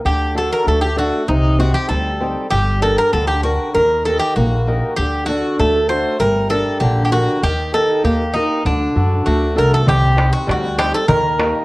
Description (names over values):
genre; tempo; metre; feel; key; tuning
greek folk, Greek bouzouki band; 98 BPM; 2/4; straight; D phrygian dominant; A4 = 440 Hz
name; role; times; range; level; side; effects
fingerpicked swing-style acoustic guitar; accompaniment; 0.0-11.6 s; C3 to Bb4; -20 LUFS; equal; none
Greek bouzouki; melody; 0.1-11.6 s; D4 to C5; -18 LUFS; equal; none
upright bass; bass; 0.1-11.5 s; G1 to F#2; -19 LUFS; equal; none
darbuka; percussion; 9.9-11.6 s; none; -20 LUFS; right 1 dB; none
room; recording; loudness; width
moderate studio ambience, RT60 0.5 s; worn, warbling old tape, cassette tape, warbly pitch drift, lossy compression artefacts; -14 LUFS; side -20 dB against mid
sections
0.0-9.9 A section; 9.9-11.6 B section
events
none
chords
0.0 D; 1.3 Cm; 2.5 Gm; 3.7 Eb; 5.0 D; 6.2 Gm; 7.4 Eb; 8.7 D; 9.9 Cm; 11.1 Eb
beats
| 0.04 0.66 | 1.28 1.89 | 2.51 3.13 | 3.75 4.36 | 4.98 5.59 | 6.21 6.82 | 7.43 8.04 | 8.65 9.26 | 9.87 10.48 | 11.09